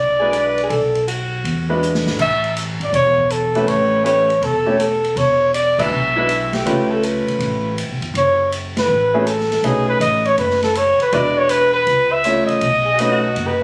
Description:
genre	jazz, small-group swing and bop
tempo	161 BPM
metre	4/4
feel	swing 66% on 8ths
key	E mixolydian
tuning	A4 = 438 Hz
part	breathy trumpet	melody	0.0-13.6 s	G#4 to E5	-18 LUFS	equal	none
part	upright bass	bass	0.0-13.6 s	E1 to E2	-28 LUFS	equal	none
part	breathy alto saxophone	second line	0.2-1.8, 6.2-7.8, 12.9-13.6 s	E4 to B4	-24 LUFS	equal	none
part	clear baby grand piano	accompaniment	0.2-13.2 s	G#3 to C#5	-23 LUFS	equal	none
part	open jazz drum kit	drums	0.3-13.5 s	crash cymbal, hi-hat, kick drum, ride cymbal, snare drum	-30 LUFS	equal	none
room	light reverb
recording	recorded on a phone in the room, studio ambience, compression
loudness	-17 LUFS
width	mono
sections	0.0-13.6 A section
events	drum fill 1.8-2.2; band accent 5.7, 8.7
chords	0.0 E7; 0.7 B5; 1.4 E7; 2.2 A7; 5.2 E7; 6.7 C#7alt; 8.1 F#m; 9.6 B7; 11.1 E7; 11.9 C#aug; 12.6 B7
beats	0.33 | 0.70 1.07 1.45 1.82 | 2.19 2.56 2.94 3.31 | 3.68 4.05 4.42 4.80 | 5.17 5.54 5.91 6.29 | 6.66 7.03 7.40 7.78 | 8.15 8.52 8.89 9.27 | 9.64 10.01 10.38 10.75 | 11.13 11.50 11.87 12.24 | 12.61 12.99 13.36

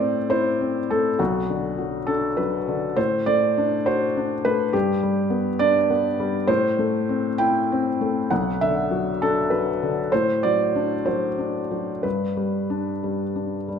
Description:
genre	neoclassical minimalist piano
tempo	60-70 BPM (dotted quarters)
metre	6/8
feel	rubato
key	unclear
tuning	A4 = 441 Hz
part	felt-muted upright piano	solo	0.0-13.8 s	B1 to G5	-20 LUFS	equal	none
room	moderate concert hall reverb, RT60 2.4 s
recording	minimal, uncompressed stereo recording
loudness	-20 LUFS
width	side -7 dB against mid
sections	0.0-13.8 A section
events	none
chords	0.0 Am; 1.2 Bm; 3.0 D/A; 4.7 G; 6.5 Am; 8.3 Bm; 10.1 D/A; 12.0 G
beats	0.29 | 1.19 2.09 | 2.97 3.87 | 4.74 5.60 | 6.48 7.41 | 8.30 9.20 | 10.11 11.06 | 12.04 13.04

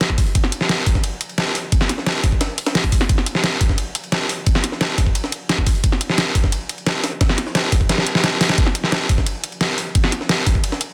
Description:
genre	drum and bass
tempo	175 BPM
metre	4/4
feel	straight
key	none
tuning	none
part	breakbeat sampler-style drum kit	drums	0.0-10.9 s	hi-hat, ride cymbal, snare drum	-30 LUFS	equal	high-pass filter on cymbals, high-pass filter on snare, high-pass filter on hats, high-pass filter on room
part	dubstep drum kit	drums	0.0-10.9 s	hi-hat, snare drum	-22 LUFS	equal	none
part	electronic kick drum	drums	0.1-10.6 s	none	-20 LUFS	equal	none
room	light reverb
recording	dense, heavily limited modern master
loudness	-19 LUFS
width	mono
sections	0.0-10.9 A section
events	kick drops out 7.9-8.6; drum fill 7.9-8.6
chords	none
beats	0.01 | 0.35 0.69 1.04 1.38 | 1.72 2.06 2.41 2.75 | 3.09 3.44 3.78 4.12 | 4.46 4.81 5.15 5.49 | 5.84 6.18 6.52 6.87 | 7.21 7.55 7.89 8.24 | 8.58 8.92 9.27 9.61 | 9.95 10.29 10.64

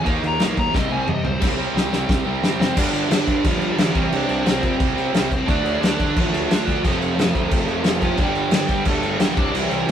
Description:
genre	punk rock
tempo	177 BPM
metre	4/4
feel	straight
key	unclear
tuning	A4 = 442 Hz
part	biting lead guitar	melody	0.0-9.9 s	E3 to Bb5	-24 LUFS	equal	overdrive
part	distorted electric guitar	riff	0.0-9.9 s	F2 to Eb4	-26 LUFS	right 7 dB	overdrive
part	high-gain distorted guitar	riff	0.0-9.9 s	F2 to Eb4	-30 LUFS	right 1 dB	distortion
part	overdriven electric guitar	riff	0.0-9.9 s	F2 to Eb4	-28 LUFS	left 4 dB	none
part	fuzz picked electric bass	bass	0.0-9.9 s	F1 to D3	-28 LUFS	equal	overdrive
part	loose indie drum kit	drums	0.1-9.9 s	crash cymbal, kick drum, snare drum, toms	-21 LUFS	equal	none
room	light reverb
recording	rough rehearsal-room recording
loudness	-17 LUFS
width	side -9 dB against mid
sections	0.0-1.4 A section; 1.4-2.8 B section; 2.8-9.9 C section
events	lead electric guitar solo 0.0-1.4; drum fill 0.7-1.4, 1.4-2.8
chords	0.1 Eb5; 0.7 C5; 2.8 G5; 3.9 C5; 5.5 Dm; 6.8 F; 8.2 G5; 9.4 C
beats	| 0.06 0.40 0.74 1.07 | 1.41 1.75 2.09 2.43 | 2.77 3.10 3.44 3.78 | 4.12 4.46 4.79 5.13 | 5.47 5.81 6.14 6.48 | 6.82 7.16 7.50 7.83 | 8.17 8.51 8.85 9.19 | 9.53 9.87

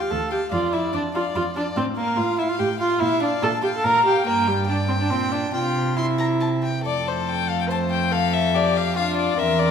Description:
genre	quick classical-period movement for string quartet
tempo	144 BPM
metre	3/4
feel	straight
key	F major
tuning	A4 = 440 Hz
part	warm violin	melody	0.0-9.7 s	G4 to Bb5	-26 LUFS	left 8 dB	none
part	warm violin	second line	0.0-9.7 s	F4 to C6	-28 LUFS	left 3 dB	none
part	warm viola	accompaniment	0.0-9.7 s	G3 to Bb4	-23 LUFS	right 2 dB	none
part	rich cello	bass	0.0-9.7 s	D2 to C3	-26 LUFS	right 2 dB	none
room	wet scoring stage reverb, RT60 2.1 s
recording	minimal, uncompressed stereo recording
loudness	-19 LUFS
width	side -7 dB against mid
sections	0.0-6.8 A section; 6.8-9.7 B section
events	none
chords	0.0 Dm; 0.5 Dm/F; 1.8 F/A; 3.0 Bb5; 4.3 Gm; 5.5 C; 6.8 F; 8.1 G5/F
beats	0.10 | 0.52 0.93 1.35 | 1.76 2.17 2.59 | 3.01 3.42 3.84 | 4.26 4.68 5.10 | 5.54 5.97 6.41 | 6.85 7.28 7.70 | 8.12 8.54 8.96 | 9.38

